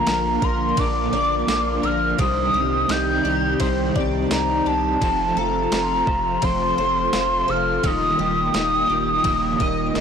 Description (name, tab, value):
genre	dream pop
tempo	85 BPM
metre	4/4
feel	straight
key	Eb lydian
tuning	A4 = 440 Hz
part	hollow clarinet-like synth lead	melody	0.0-10.0 s	Eb5 to G6	-21 LUFS	equal	chorus, digital delay
part	electric guitar at the edge of break-up	accompaniment	0.0-10.0 s	Bb2 to Eb5	-28 LUFS	right 4 dB	tremolo, wide subtle chorus
part	phased analog pad	sustained chords	0.0-10.0 s	C3 to F4	-27 LUFS	equal	phaser, chorus
part	picked twelve-string acoustic guitar	arpeggios	0.0-10.0 s	C3 to Eb5	-26 LUFS	left 5 dB	analog chorus, digital delay
part	saturated sub bass	bass	0.0-10.0 s	Eb1 to C2	-29 LUFS	right 1 dB	transformer saturation
part	clean 12-bit digital drum machine	drums	0.1-10.0 s	kick drum, ride cymbal, snare drum, tambourine	-28 LUFS	right 1 dB	overdrive
room	moderate lush hall reverb, RT60 3.0 s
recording	blown-out, overdriven recording, overdrive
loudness	-18 LUFS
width	side -7 dB against mid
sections	0.0-10.0 A section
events	none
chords	0.0 Bb; 2.2 Cmadd9; 5.0 F; 7.8 Ebadd9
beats	0.07 0.78 1.49 | 2.19 2.90 3.60 4.31 | 5.02 5.72 6.43 7.13 | 7.84 8.54 9.25 9.96